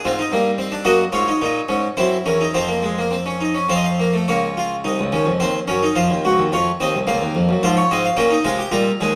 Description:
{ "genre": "classical, baroque-style 4-part fugue for harpsichord", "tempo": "108 BPM", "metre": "3/4", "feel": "straight", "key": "unclear", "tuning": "A4 = 441 Hz", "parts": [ { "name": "harpsichord", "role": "solo", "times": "0.0-9.2 s", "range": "C2 to Bb5", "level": "-19 LUFS", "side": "equal", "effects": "none" } ], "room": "wet recital hall reverb, RT60 1.6 s", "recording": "none", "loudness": "-19 LUFS", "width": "mono", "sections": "0.0-4.3 A section; 4.3-9.2 B section", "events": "none", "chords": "0.3 Eb/G; 0.9 Ebm/Gb; 2.0 Gb7; 2.6 Fsus4; 3.7 F; 4.3 Bbm/Db; 5.4 Cdim/Eb; 6.0 F5; 7.1 Bbm/Db; 7.6 Fm/Ab" }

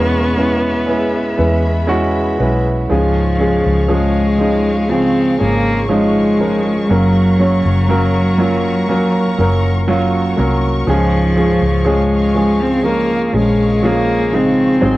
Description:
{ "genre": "pop ballad", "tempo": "60 BPM", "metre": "4/4", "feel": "straight", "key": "Db major", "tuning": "A4 = 440 Hz", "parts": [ { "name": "warm cello", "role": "melody", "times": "0.0-15.0 s", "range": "F3 to C4", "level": "-17 LUFS", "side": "left 1 dB", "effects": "cassette tape" }, { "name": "warm concert grand piano", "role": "accompaniment", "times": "0.0-15.0 s", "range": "Ab2 to Db5", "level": "-16 LUFS", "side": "right 1 dB", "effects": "none" }, { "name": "warm studio string section", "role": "sustained chords", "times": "0.0-15.0 s", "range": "Ab4 to C#6", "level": "-25 LUFS", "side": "left 2 dB", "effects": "none" }, { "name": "fingerpicked steel-string acoustic guitar", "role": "arpeggios", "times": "0.0-15.0 s", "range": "Ab2 to B4", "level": "-27 LUFS", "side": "left 4 dB", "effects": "none" }, { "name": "vintage muted fingered electric bass", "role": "bass", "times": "0.0-15.0 s", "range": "Gb1 to E2", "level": "-19 LUFS", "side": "equal", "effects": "none" } ], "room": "moderate small room reverb, RT60 0.5 s", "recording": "home recording on cassette", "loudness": "-12 LUFS", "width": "side -17 dB against mid", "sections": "0.0-15.0 A section", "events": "none", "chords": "0.0 E6; 2.9 Db; 6.9 Gb; 10.9 Db" }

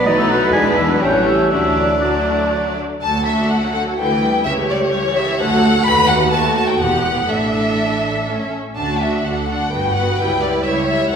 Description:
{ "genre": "quick classical-period movement for symphony orchestra", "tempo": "117-130 BPM", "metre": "3/4", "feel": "rubato", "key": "D major", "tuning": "A4 = 439 Hz", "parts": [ { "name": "rich chamber violin section", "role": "melody", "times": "0.0-11.2 s", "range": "B4 to B5", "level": "-20 LUFS", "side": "left 2 dB", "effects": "none" }, { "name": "clear oboe", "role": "second line", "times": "0.0-2.8 s", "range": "D5 to G#5", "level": "-22 LUFS", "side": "right 1 dB", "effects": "none" }, { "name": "mellow clarinet", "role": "second line", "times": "0.0-2.8 s", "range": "D4 to G#4", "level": "-25 LUFS", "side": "equal", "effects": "none" }, { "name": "mellow bassoon", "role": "accompaniment", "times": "0.0-2.8 s", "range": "C#4 to D#4", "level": "-22 LUFS", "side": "right 1 dB", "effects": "none" }, { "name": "rich chamber cello section", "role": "bass", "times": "0.0-11.2 s", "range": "C#2 to G#3", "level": "-23 LUFS", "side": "right 2 dB", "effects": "none" }, { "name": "silver concert flute", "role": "second line", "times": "0.1-2.8 s", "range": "F#6 to B6", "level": "-25 LUFS", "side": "equal", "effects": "none" }, { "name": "warm chamber violin section", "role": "second line", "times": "0.1-11.2 s", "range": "A3 to C#5", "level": "-23 LUFS", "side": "left 3 dB", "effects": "none" }, { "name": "rich chamber viola section", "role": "accompaniment", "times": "0.1-11.2 s", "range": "C#3 to A4", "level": "-22 LUFS", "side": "right 2 dB", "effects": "none" }, { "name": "mellow French horn section", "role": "sustained chords", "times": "0.1-2.8 s", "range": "F#3 to D#4", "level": "-24 LUFS", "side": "left 3 dB", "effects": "none" }, { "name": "clear chamber double bass section", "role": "bass", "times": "0.1-11.2 s", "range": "E1 to E2", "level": "-25 LUFS", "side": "right 2 dB", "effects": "none" } ], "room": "wet recital hall reverb, RT60 1.5 s", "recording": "minimal, uncompressed stereo recording", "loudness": "-14 LUFS", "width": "side -7 dB against mid", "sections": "0.0-3.0 A section; 3.0-11.2 B section", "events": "none", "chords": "0.1 B7; 0.5 E7; 1.0 A7; 1.5 D; 4.0 Em7/D; 4.5 A7/C#; 5.4 D; 5.9 B7/D#; 6.8 Em; 7.3 Asus4; 8.3 A; 8.8 D; 9.7 Gmaj7; 10.2 C#dim" }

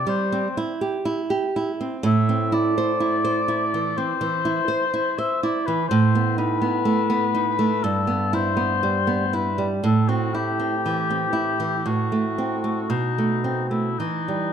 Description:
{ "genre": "romantic duo for oboe and classical guitar", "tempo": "53-64 BPM", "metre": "4/4", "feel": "rubato", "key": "unclear", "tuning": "A4 = 439 Hz", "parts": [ { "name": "mellow oboe", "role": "melody", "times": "0.0-14.5 s", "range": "D#4 to E5", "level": "-24 LUFS", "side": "left 5 dB", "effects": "none" }, { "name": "nylon-string guitar", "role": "accompaniment", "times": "0.0-14.5 s", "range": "G2 to C5", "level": "-22 LUFS", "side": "right 2 dB", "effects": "none" } ], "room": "light reverb", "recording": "close, detailed microphones", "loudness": "-20 LUFS", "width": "side -8 dB against mid", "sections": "0.0-14.5 A section", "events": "none", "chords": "0.0 C; 2.1 Am; 5.9 B7/A; 7.8 Em/G; 9.8 Am; 11.9 F#dim/A; 12.9 B7b9; 14.0 Em" }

